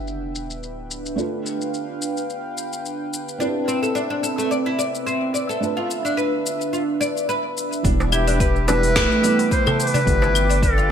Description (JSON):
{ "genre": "organic downtempo", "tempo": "108 BPM", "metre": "4/4", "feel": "swing 55% on 16ths", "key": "unclear", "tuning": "A4 = 440 Hz", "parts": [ { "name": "felt-muted upright piano", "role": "accompaniment", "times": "0.0-10.9 s", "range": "E3 to E5", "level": "-29 LUFS", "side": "right 4 dB", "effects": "ensemble chorus, sidechain pumping, ping-pong delay" }, { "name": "warm analog pad", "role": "sustained chords", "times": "0.0-10.9 s", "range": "C4 to D6", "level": "-26 LUFS", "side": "right 1 dB", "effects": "chorus, sidechain pumping" }, { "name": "sub drop", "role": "sound effects", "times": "0.0-1.2 s", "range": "none", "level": "-35 LUFS", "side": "equal", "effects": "none" }, { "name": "deep house drum kit", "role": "drums", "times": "0.1-10.9 s", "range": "claves, hi-hat, shaker, snare drum", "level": "-27 LUFS", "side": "left 3 dB", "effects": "low-pass filter on hats, low-pass filter on perc, low-pass filter on snare, gated reverb" }, { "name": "oud", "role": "arpeggios", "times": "3.4-10.9 s", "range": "A3 to D5", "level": "-24 LUFS", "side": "left 1 dB", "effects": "ping-pong delay" }, { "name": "round analog bass", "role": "bass", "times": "7.8-10.9 s", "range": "D1 to G1", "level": "-21 LUFS", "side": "equal", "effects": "none" }, { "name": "electronic kick drum", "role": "drums", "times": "7.8-10.7 s", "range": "none", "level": "-22 LUFS", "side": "equal", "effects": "none" }, { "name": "darbuka", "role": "percussion", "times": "8.0-10.3 s", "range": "none", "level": "-26 LUFS", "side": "right 2 dB", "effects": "none" }, { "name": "clear clarinet", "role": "melody", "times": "8.1-10.9 s", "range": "G4 to C5", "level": "-21 LUFS", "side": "left 2 dB", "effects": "ping-pong delay" } ], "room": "moderate plate reverb, RT60 1.9 s, small room reverb", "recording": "bright 1980s-style digital production", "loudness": "-19 LUFS", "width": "side -8 dB against mid", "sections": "0.0-7.8 A section; 7.8-10.9 B section", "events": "impact 0.0-1.2", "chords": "0.0 Em7; 1.2 G7; 3.4 Cmaj7; 5.6 Dm69; 7.8 Em7; 10.1 G7", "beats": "0.07 0.62 | 1.18 1.74 2.29 2.85 | 3.40 3.96 4.51 5.07 | 5.62 6.18 6.74 7.29 | 7.85 8.40 8.96 9.51 | 10.07 10.62" }